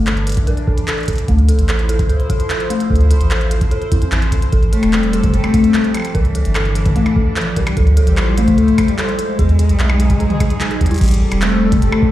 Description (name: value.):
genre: IDM.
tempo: 148 BPM.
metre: 4/4.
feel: straight.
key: unclear.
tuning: A4 = 440 Hz.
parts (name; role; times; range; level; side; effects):
phased analog pad; sustained chords; 0.0-12.1 s; E3 to C5; -24 LUFS; right 1 dB; phaser, chorus, sidechain pumping.
warm sub bass; bass; 0.0-11.9 s; E1 to F2; -15 LUFS; equal; none.
dark detuned synth bell; arpeggios; 0.1-11.0 s; G#3 to Bb4; -22 LUFS; left 1 dB; chorus, digital delay.
glitchy drum kit; drums; 0.1-12.0 s; crash cymbal, handclaps, hi-hat, percussion blips, toms; -23 LUFS; right 1 dB; none.
electronic kick drum; drums; 0.4-12.1 s; none; -18 LUFS; equal; none.
warm cello; melody; 4.7-12.1 s; E3 to A3; -18 LUFS; left 3 dB; digital delay.
room: light reverb.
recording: played on a big sound system in a bare room, large studio reverb.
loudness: -12 LUFS.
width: side -14 dB against mid.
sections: 0.0-11.0 A section; 11.0-12.1 B section.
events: drum fill 10.8.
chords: 0.0 Cadd9 (rootless); 1.3 Dm9; 4.5 Am7; 6.1 Cadd9; 7.8 Dm9; 9.4 Emaj9; 11.0 Am7.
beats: 0.07 0.47 0.88 | 1.28 1.69 2.09 2.50 | 2.90 3.31 3.71 4.12 | 4.53 4.93 5.34 5.74 | 6.15 6.55 6.96 7.36 | 7.77 8.18 8.58 8.98 | 9.39 9.80 10.20 10.61 | 11.01 11.42 11.82.